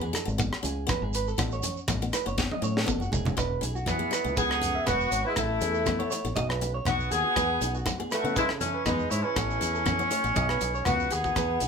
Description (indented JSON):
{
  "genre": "highlife guitar band",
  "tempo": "120 BPM",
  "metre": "4/4",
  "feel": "swing 53% on 16ths",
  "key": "E major",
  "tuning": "A4 = 440 Hz",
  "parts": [
    { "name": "picked steel-string acoustic guitar", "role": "accompaniment", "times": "0.0-11.7 s", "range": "G#3 to E4", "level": "-35 LUFS", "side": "left 5 dB", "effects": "none" },
    { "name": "electric guitar at the edge of break-up", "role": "arpeggios", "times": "0.0-11.7 s", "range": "F#4 to E5", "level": "-33 LUFS", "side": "right 6 dB", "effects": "none" },
    { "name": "fingered electric bass", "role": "bass", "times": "0.0-11.7 s", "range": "E1 to C#3", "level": "-32 LUFS", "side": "equal", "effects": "none" },
    { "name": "tight funk drum kit", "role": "drums", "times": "0.1-11.7 s", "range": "hi-hat, kick drum, rim click, snare drum, toms", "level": "-32 LUFS", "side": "left 1 dB", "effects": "none" },
    { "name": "congas", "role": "percussion", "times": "0.1-11.7 s", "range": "none", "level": "-34 LUFS", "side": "right 1 dB", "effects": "none" },
    { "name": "shekere", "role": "percussion", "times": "0.2-11.7 s", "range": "none", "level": "-36 LUFS", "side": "right 5 dB", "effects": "none" },
    { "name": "warm horn section", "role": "melody", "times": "3.9-11.7 s", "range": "E3 to G#4", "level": "-28 LUFS", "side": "equal", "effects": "none" },
    { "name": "warm tenor saxophone", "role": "second line", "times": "3.9-11.7 s", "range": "E3 to B3", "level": "-34 LUFS", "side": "left 6 dB", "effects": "slapback echo" }
  ],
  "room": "wet studio ambience, RT60 0.5 s",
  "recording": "band playing live in one room",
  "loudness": "-25 LUFS",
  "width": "side -6 dB against mid",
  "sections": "0.0-3.4 A section; 3.4-11.7 B section",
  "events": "drum fill 2.4-3.4",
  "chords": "0.0 E (rootless); 1.4 A; 3.4 E; 5.4 A; 6.4 B; 7.4 E; 9.4 A; 10.4 B"
}